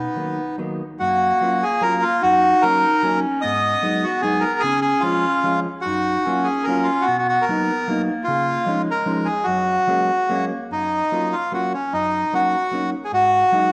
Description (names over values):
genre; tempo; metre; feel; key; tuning
musette waltz; 149 BPM; 3/4; rubato; F# major; A4 = 440 Hz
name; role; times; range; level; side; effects
bandoneon; melody; 0.0-13.7 s; B3 to D#5; -21 LUFS; equal; none
warm clarinet; second line; 0.0-10.7 s; F#3 to D#4; -28 LUFS; equal; tape echo
hollow-body jazz guitar; accompaniment; 0.0-13.7 s; F#2 to E#4; -28 LUFS; equal; none
room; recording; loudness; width
wet echo chamber reverb, RT60 1.6 s; faint mains hum; -20 LUFS; mono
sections
0.0-1.0 A section; 1.0-10.7 B section; 10.7-13.7 B section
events
none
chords
0.0 Bmaj7; 1.0 F#maj7; 2.2 D#m7/F#; 3.4 G#m7; 4.6 C#; 5.9 F#maj7; 7.1 Bmaj7; 8.3 C#add9; 9.5 F#add9; 10.7 F#maj7; 11.9 D#m7/F#; 13.1 G#m7